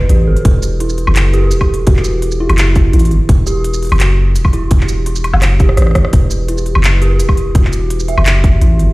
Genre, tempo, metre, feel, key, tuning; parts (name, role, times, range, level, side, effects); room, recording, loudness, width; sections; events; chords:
half-time drum and bass; 169 BPM; 4/4; half-time; A4 = 440 Hz
dark detuned synth bell; arpeggios; 0.0-8.9 s; E4 to E5; -20 LUFS; right 2 dB; chorus, phaser, dub echo
long sustained 808-style bass; bass; 0.0-8.9 s; E1 to A1; -12 LUFS; equal
drum and bass drum kit; drums; 0.1-8.9 s; handclaps, hi-hat, rim click, shaker, woodblock; -19 LUFS; equal
electronic kick drum; drums; 0.5-8.5 s; -10 LUFS; equal
digital ambience; played on a big sound system in a bare room, stone room reverb; -10 LUFS; side -21 dB against mid
0.0-8.9 A section
drum fill 5.4-6.1
0.0 E5